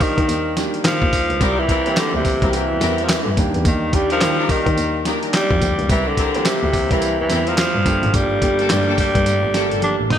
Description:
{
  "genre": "R&B, new jack swing",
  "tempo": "107 BPM",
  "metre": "4/4",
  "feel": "swing 61% on 16ths",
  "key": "unclear",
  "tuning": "A4 = 439 Hz",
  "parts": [
    { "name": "breathy tenor saxophone", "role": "melody", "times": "0.0-10.2 s", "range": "C3 to Eb4", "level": "-20 LUFS", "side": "equal", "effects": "ping-pong delay" },
    { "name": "clear concert grand piano", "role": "accompaniment", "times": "0.0-10.2 s", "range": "D3 to G4", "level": "-25 LUFS", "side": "right 2 dB", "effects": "none" },
    { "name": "bright double bass", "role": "bass", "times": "0.0-10.2 s", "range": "G1 to Eb3", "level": "-23 LUFS", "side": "equal", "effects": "none" },
    { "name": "dusty soul sampler-style drum kit", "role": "drums", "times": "0.0-10.2 s", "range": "handclaps, hi-hat, kick drum, snare drum, tambourine, toms", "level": "-21 LUFS", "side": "equal", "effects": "none" },
    { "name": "rich studio string section", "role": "stabs", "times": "1.4-9.7 s", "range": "Bb3 to Bb4", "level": "-26 LUFS", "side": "left 3 dB", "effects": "none" }
  ],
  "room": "moderate lush hall reverb, RT60 1.9 s, studio ambience",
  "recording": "bright 1980s-style digital production",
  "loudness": "-16 LUFS",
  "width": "side -9 dB against mid",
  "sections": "0.0-10.2 A section",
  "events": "drum fill 9.8-10.2",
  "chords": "0.0 Ebmaj7; 1.4 C7; 3.4 Ebmaj7; 5.9 C7; 7.9 Gmadd9"
}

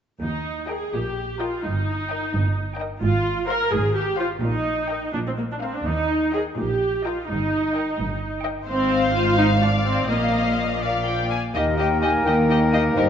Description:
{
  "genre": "quick classical-period movement for symphony orchestra",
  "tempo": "85 BPM (dotted quarters)",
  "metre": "6/8",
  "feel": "rubato",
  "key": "Eb major",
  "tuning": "A4 = 440 Hz",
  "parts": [
    { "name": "muted studio viola section", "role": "accompaniment", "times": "0.2-13.0 s", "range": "Bb3 to Bb4", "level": "-24 LUFS", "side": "equal", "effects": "none" },
    { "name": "muted studio cello section", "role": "bass", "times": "0.2-13.1 s", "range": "Eb2 to Bb2", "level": "-28 LUFS", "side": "right 1 dB", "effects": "none" },
    { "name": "muted studio double bass section", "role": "bass", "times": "0.2-13.1 s", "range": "G1 to Eb2", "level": "-27 LUFS", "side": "right 2 dB", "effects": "none" },
    { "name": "muted studio violin section", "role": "melody", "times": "0.7-13.0 s", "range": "Bb4 to Ab5", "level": "-31 LUFS", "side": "left 4 dB", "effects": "none" },
    { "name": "muted studio violin section", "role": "second line", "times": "0.7-13.1 s", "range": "G4 to F5", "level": "-28 LUFS", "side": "left 3 dB", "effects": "none" },
    { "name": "clear clarinet", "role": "second line", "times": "11.5-13.1 s", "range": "Eb4", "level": "-28 LUFS", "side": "left 3 dB", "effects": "none" },
    { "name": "warm bassoon", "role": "accompaniment", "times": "11.5-13.1 s", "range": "Bb3", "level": "-28 LUFS", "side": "right 3 dB", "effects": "none" },
    { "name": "mellow French horn section", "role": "sustained chords", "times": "11.5-13.1 s", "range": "G4 to C5", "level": "-25 LUFS", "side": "left 5 dB", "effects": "none" },
    { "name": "mellow concert flute", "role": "second line", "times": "11.6-13.1 s", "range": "Eb5 to Ab5", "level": "-24 LUFS", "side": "left 3 dB", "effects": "none" },
    { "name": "warm oboe", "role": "second line", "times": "11.6-13.1 s", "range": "Bb4", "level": "-28 LUFS", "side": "left 2 dB", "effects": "none" }
  ],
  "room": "moderate scoring stage reverb, RT60 1.6 s",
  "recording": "nothing above 7.8 kHz",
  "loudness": "-20 LUFS",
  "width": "side -8 dB against mid",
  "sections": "0.2-11.6 A section; 11.6-13.1 A section",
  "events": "none",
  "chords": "0.2 Eb; 1.6 Eb/G; 3.0 Fm/Ab; 4.4 Eb/Bb; 5.1 Bb5; 5.9 Eb; 7.3 Eb/G; 8.7 Fm/Ab; 10.1 Bbsus4; 11.6 Eb"
}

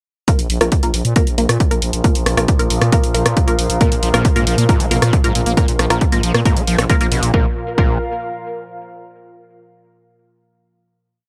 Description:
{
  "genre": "driving peak-time techno",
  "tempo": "136 BPM",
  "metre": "4/4",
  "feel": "straight",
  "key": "unclear",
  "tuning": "A4 = 440 Hz",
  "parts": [
    { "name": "filtered dub chord stab", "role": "stabs", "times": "0.3-7.9 s", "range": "Bb3 to Bb4", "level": "-24 LUFS", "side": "equal", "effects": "phaser, cassette tape, sidechain pumping, analog delay" },
    { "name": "overtone-sweeping drone", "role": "drone", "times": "1.0-7.4 s", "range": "Bb2 to F3", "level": "-30 LUFS", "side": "equal", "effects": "none" },
    { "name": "electronic kick drum", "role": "drums", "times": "0.3-7.9 s", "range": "none", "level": "-18 LUFS", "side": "equal", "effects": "none" },
    { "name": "punchy analog drum machine", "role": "drums", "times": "0.3-7.3 s", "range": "hi-hat, rim click", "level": "-23 LUFS", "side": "equal", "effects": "none" },
    { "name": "warbly tape-like pad", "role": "texture", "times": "1.8-9.1 s", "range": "F4 to F5", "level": "-28 LUFS", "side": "equal", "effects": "chorus, built-in reverb, sidechain pumping" },
    { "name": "growling FM bass", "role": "bass", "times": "0.4-8.0 s", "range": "Bb1 to Bb2", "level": "-23 LUFS", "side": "equal", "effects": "sidechain pumping" },
    { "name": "screaming distorted acid line", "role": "riff", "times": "3.8-8.0 s", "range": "Ab2 to Bb3", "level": "-24 LUFS", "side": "equal", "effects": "distortion, analog chorus, sidechain pumping, analog delay" }
  ],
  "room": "digital ambience",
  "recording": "dry, gritty hardware recording",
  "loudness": "-16 LUFS",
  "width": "mono",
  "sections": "0.3-7.3 groove; 7.3-9.1 final chord",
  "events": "none",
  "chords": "0.3 Bb5"
}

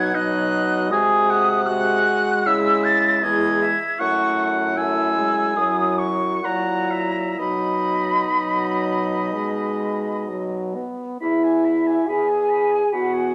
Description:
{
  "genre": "classical, slow romantic movement for wind quintet",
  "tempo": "60-80 BPM",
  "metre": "4/4",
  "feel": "rubato",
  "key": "E major",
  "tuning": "A4 = 441 Hz",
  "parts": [
    { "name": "silver concert flute", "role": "melody", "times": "0.0-13.3 s", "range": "E5 to A6", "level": "-25 LUFS", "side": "equal", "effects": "none" },
    { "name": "clear oboe", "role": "second line", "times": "0.0-13.3 s", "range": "D#5 to B5", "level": "-28 LUFS", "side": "equal", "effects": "none" },
    { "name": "dark clarinet", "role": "accompaniment", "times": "0.0-13.3 s", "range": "B3 to F#4", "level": "-30 LUFS", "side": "equal", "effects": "none" },
    { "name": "warm French horn", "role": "accompaniment", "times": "0.0-13.3 s", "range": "F#3 to G#4", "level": "-26 LUFS", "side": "equal", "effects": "none" },
    { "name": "warm bassoon", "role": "bass", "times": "0.0-13.3 s", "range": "E2 to C#3", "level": "-31 LUFS", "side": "equal", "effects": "none" }
  ],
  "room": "wet large studio reverb, RT60 1.3 s",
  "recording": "none",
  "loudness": "-21 LUFS",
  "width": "mono",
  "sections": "0.0-11.2 A section; 11.2-13.3 B section",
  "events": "none",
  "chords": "0.0 B; 0.9 G#7/B#; 2.5 C#m; 4.0 F#m7; 5.6 F#7; 7.4 B; 11.2 E"
}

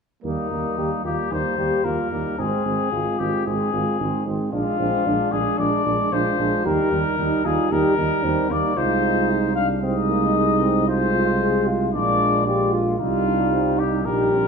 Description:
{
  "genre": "classical, brass quintet",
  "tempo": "113 BPM",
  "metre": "4/4",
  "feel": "straight",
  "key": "Eb major",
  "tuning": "A4 = 440 Hz",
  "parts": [
    { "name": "mellow trumpet", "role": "melody", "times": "0.2-14.5 s", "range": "Eb4 to F5", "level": "-24 LUFS", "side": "left 6 dB", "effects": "none" },
    { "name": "mellow flugelhorn", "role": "second line", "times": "0.2-14.5 s", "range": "Bb3 to F4", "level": "-26 LUFS", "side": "right 7 dB", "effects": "none" },
    { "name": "clear trombone", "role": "accompaniment", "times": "0.2-14.5 s", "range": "G3 to Ab3", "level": "-28 LUFS", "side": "right 3 dB", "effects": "none" },
    { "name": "warm French horn", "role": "accompaniment", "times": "0.2-14.4 s", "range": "Ab3 to Bb4", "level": "-26 LUFS", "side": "left 4 dB", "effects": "none" },
    { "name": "mellow tuba", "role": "bass", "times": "0.2-14.5 s", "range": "Ab1 to Eb2", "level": "-26 LUFS", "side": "right 4 dB", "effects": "none" }
  ],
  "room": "wet recital hall reverb, RT60 1.7 s",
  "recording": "minimal, uncompressed stereo recording",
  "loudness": "-19 LUFS",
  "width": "side -5 dB against mid",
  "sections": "0.2-14.5 A section",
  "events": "none",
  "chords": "0.2 Eb; 2.4 Ab; 4.5 Bb7; 6.7 Eb; 8.8 Ab/C; 10.9 Fm/C; 11.9 Bb7; 13.0 Cm"
}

